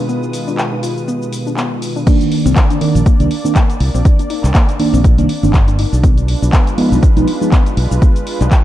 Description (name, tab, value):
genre	deep house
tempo	121 BPM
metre	4/4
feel	swing 56% on 16ths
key	C minor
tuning	A4 = 439 Hz
part	warm analog pad	sustained chords	0.0-8.6 s	B2 to D5	-23 LUFS	right 1 dB	chorus, sidechain pumping
part	mellow FM electric piano	stabs	0.0-7.5 s	B2 to G4	-18 LUFS	right 2 dB	chorus, phaser, analog delay
part	string machine, violins	texture	0.0-2.1 s	Eb6	-40 LUFS	equal	ensemble chorus, sidechain pumping
part	soft round pluck	arpeggios	0.1-8.4 s	Bb3 to F4	-23 LUFS	left 5 dB	wide subtle chorus, sidechain pumping, analog delay
part	deep house drum kit	drums	0.1-8.6 s	crash cymbal, handclaps, hi-hat, shaker	-24 LUFS	left 1 dB	none
part	electronic kick drum	drums	2.1-8.6 s	none	-10 LUFS	equal	none
part	modern bright fingered electric bass	bass	2.5-8.5 s	G1 to C2	-14 LUFS	equal	sidechain pumping
room	little or no reverb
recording	none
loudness	-11 LUFS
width	side -13 dB against mid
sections	0.0-2.1 A section; 2.1-8.6 B section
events	filter sweep on drum 0.0-2.1; drop 2.1-8.6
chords	0.0 G7b9b13/B; 2.1 Cm9; 6.0 G7b9b13/B (rootless)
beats	| 0.09 0.58 1.08 1.57 | 2.07 2.56 3.06 3.56 | 4.05 4.55 5.04 5.54 | 6.04 6.53 7.03 7.52 | 8.02 8.52